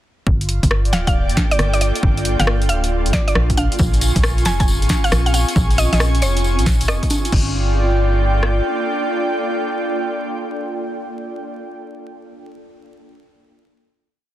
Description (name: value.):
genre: UK garage, two-step garage.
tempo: 136 BPM.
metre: 4/4.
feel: swing 66% on 16ths.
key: unclear.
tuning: A4 = 439 Hz.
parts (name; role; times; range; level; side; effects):
ethereal airy pad; sustained chords; 1.0-11.6 s; Bb3 to A4; -28 LUFS; equal; ensemble chorus, built-in reverb, vintage 12-bit sampler grit, sidechain pumping.
organ-like FM bass; bass; 0.3-8.6 s; D1 to Bb1; -18 LUFS; equal; none.
punchy analog drum machine; drums; 0.3-8.6 s; kick drum, rim click; -19 LUFS; equal; soft clipping on snare.
airy breathy pad; texture; 0.3-11.6 s; F4 to Db6; -24 LUFS; right 1 dB; chorus, sidechain pumping.
punchy analog drum machine; drums; 0.4-7.4 s; congas, crash cymbal, hi-hat, rim click, snare drum; -23 LUFS; equal; soft clipping on snare.
mallet-like synth pluck; melody; 0.9-7.2 s; Db5 to Ab5; -24 LUFS; equal; chorus, tape echo.
tambourine; percussion; 3.8-7.3 s; none; -28 LUFS; left 2 dB; none.
room: little or no reverb.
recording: dense, heavily limited modern master, vinyl crackle.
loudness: -15 LUFS.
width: side -13 dB against mid.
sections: 0.3-7.3 drop; 7.3-10.9 final chord.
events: drop 0.3-7.3.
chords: 0.3 Gm7; 3.6 Bbm7; 7.3 Gm7.